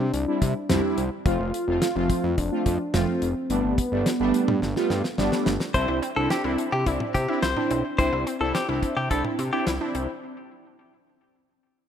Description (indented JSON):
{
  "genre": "synth-pop",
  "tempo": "107 BPM",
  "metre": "4/4",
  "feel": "straight",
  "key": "C major",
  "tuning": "A4 = 440 Hz",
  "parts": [
    { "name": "warm velvety synth lead", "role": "melody", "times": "0.0-5.1 s", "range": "B3 to F4", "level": "-28 LUFS", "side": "equal", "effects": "chorus, tape echo" },
    { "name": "analog synth brass", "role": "accompaniment", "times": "0.0-10.1 s", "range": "F3 to F4", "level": "-26 LUFS", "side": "right 1 dB", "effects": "chorus, phaser" },
    { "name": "fat analog bass", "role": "bass", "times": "0.0-10.1 s", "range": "F1 to C3", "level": "-28 LUFS", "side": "equal", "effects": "none" },
    { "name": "damped 70s drum kit", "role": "drums", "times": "0.1-10.1 s", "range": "hi-hat, kick drum, snare drum, toms", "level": "-27 LUFS", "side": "equal", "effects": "none" },
    { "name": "direct-recorded clean electric guitar", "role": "second line", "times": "5.7-9.6 s", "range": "G4 to C5", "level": "-27 LUFS", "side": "left 3 dB", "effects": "tape echo" },
    { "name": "analog pluck", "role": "arpeggios", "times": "5.7-10.2 s", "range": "C4 to G4", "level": "-33 LUFS", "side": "left 1 dB", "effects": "chorus, tape echo" }
  ],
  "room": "moderate lush hall reverb, RT60 2.0 s",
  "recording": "rough home demo mix",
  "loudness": "-22 LUFS",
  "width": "side -8 dB against mid",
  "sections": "0.0-5.7 A section; 5.7-10.2 B section",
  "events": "drum fill 4.6-5.7",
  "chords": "0.0 Cadd9; 1.3 F; 3.5 Gadd9; 5.7 Cadd9"
}